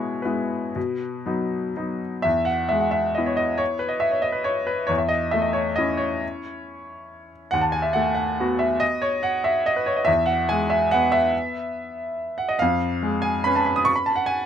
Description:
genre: classical, piano waltz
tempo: 116-150 BPM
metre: 3/4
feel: rubato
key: E major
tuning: A4 = 440 Hz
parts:
  - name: bright baby grand piano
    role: solo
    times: 0.0-14.5 s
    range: D#2 to D#6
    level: -21 LUFS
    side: equal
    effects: none
room: little or no reverb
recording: close, detailed microphones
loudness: -20 LUFS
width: side -9 dB against mid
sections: 0.0-2.2 A section; 2.2-14.5 B section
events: none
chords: 0.0 E/B; 0.8 B; 2.2 E; 4.9 A/E; 7.5 B7/D#; 10.1 E; 12.6 C#7/E#

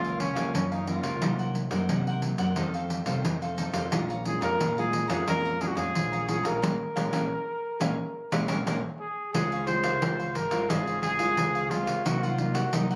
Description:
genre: samba and choro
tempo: 89 BPM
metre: 4/4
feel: straight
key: Bb minor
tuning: A4 = 440 Hz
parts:
  - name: mellow trumpet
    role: melody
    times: 0.0-13.0 s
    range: Db4 to C5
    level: -32 LUFS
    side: equal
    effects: plate reverb
  - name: cavaquinho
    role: accompaniment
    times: 0.0-13.0 s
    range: Eb4 to Bb5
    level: -39 LUFS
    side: equal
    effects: none
  - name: nylon-string guitar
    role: accompaniment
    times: 0.0-13.0 s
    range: F2 to F4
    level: -35 LUFS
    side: equal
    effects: none
  - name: modern bright fingered electric bass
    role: bass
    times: 0.0-13.0 s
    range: Ab1 to C3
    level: -36 LUFS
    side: equal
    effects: none
  - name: pandeiro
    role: percussion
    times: 0.0-13.0 s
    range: none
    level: -34 LUFS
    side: equal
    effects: none
room: moderate studio reverb, RT60 0.6 s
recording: recorded on a phone in the room, club reverb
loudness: -28 LUFS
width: mono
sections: 0.0-9.3 A section; 9.3-13.0 B section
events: band accent 6.6-9.3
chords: 0.0 Gbmaj7; 1.2 Cm7b5; 2.6 F7; 3.9 Bbm7; 9.3 Dbmaj7; 12.1 Cm7b5

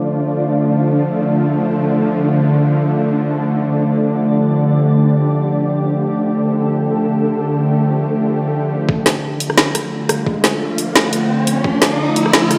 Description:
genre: half-time drum and bass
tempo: free time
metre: none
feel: none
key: D minor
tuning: A4 = 440 Hz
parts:
  - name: bowed-like drone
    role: sustained chords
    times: 0.0-12.6 s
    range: D3 to G4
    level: -18 LUFS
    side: equal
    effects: built-in reverb, sidechain pumping
  - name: flickering grainy texture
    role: texture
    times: 0.0-8.9 s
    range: D4 to D5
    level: -26 LUFS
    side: equal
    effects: built-in reverb
  - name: electronic kick drum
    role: drums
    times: 8.9-11.7 s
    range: none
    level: -21 LUFS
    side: equal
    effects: high-pass filter on kick, studio reverb
  - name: riser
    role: sound effects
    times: 9.9-12.6 s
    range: none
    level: -23 LUFS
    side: equal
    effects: none
  - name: drum and bass drum kit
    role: drums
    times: 9.1-12.6 s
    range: hi-hat, rim click, snare drum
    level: -18 LUFS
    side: equal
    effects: overdrive, low-pass filter on snare, studio reverb, low-pass filter on hats, low-pass filter on toms, low-pass filter on cymbals
room: moderate huge ambient reverb, RT60 4.2 s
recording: played on a big sound system in a bare room, stone room reverb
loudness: -16 LUFS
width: mono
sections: 0.0-8.9 A section; 8.9-12.6 B section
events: build-up 8.9-12.6; filter sweep on synth drone 8.9-12.6; riser 9.9-12.6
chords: 0.0 Dm

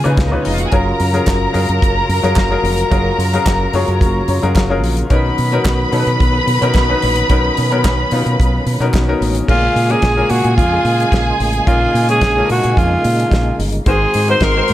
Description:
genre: disco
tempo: 110 BPM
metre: 4/4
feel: straight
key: unclear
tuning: A4 = 440 Hz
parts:
  - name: warm symphonic violin section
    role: second line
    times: 0.0-14.7 s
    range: Bb3 to C6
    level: -20 LUFS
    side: equal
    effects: none
  - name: clear baby grand piano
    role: accompaniment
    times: 0.0-14.7 s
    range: Bb2 to F5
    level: -20 LUFS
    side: left 4 dB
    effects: none
  - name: percussive tonewheel organ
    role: sustained chords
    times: 0.0-14.7 s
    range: Bb2 to Gb4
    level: -24 LUFS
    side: right 1 dB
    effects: overdrive, chorus vibrato, slow rotary speaker
  - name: damped 70s drum kit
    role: drums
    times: 0.0-14.7 s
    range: crash cymbal, hi-hat, kick drum, snare drum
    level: -18 LUFS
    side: equal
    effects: none
  - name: fingered electric bass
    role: bass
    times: 0.1-14.7 s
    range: F1 to Db3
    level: -17 LUFS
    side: equal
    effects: none
  - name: group handclap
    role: percussion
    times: 1.3-9.1 s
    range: none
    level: -27 LUFS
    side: right 4 dB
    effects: none
  - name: breathy alto saxophone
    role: melody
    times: 9.5-14.7 s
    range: F4 to C5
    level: -16 LUFS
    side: equal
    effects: none
room: small room ambience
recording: none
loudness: -12 LUFS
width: side -13 dB against mid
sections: 0.0-9.5 A section; 9.5-14.7 B section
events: grand piano fill 4.0-5.1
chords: 0.0 Db7; 0.7 Gbmaj7; 5.1 Bmaj7; 9.5 Bbm7; 13.9 Ab7

